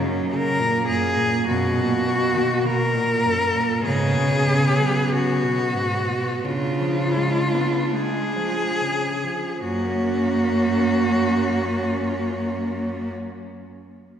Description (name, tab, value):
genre	classical, lyrical piece for cello ensemble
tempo	33-55 BPM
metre	4/4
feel	rubato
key	F# major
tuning	A4 = 440 Hz
part	rich cello	melody	0.0-13.1 s	C#4 to A#4	-23 LUFS	left 2 dB	none
part	warm cello	second line	0.0-13.1 s	A#3 to D4	-29 LUFS	right 4 dB	none
part	rich cello	accompaniment	0.0-13.1 s	F#2 to B3	-25 LUFS	right 1 dB	none
part	rich cello	bass	0.0-13.1 s	F#2 to C#3	-26 LUFS	equal	none
room	wet church reverb, RT60 2.9 s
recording	none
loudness	-19 LUFS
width	side -9 dB against mid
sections	0.0-9.6 A section; 9.6-14.2 B section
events	slowing down 0.0-9.6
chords	0.0 F#; 1.5 Bmaj7/F#; 3.9 C#7sus4/G#; 6.4 C#7b9; 9.6 F#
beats	0.34 1.49 2.66 | 3.86 5.12 6.45 7.95 | 9.65 11.22 12.81